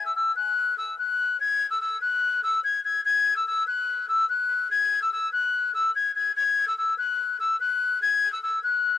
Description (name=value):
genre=hip hop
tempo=145 BPM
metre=4/4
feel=half-time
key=unclear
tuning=A4 = 440 Hz
part: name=silver concert flute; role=solo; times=0.0-9.0 s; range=E6 to G#6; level=-22 LUFS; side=left 3 dB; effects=cassette tape
room=light reverb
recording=home recording on cassette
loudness=-22 LUFS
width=side -12 dB against mid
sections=0.0-9.0 A section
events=none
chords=none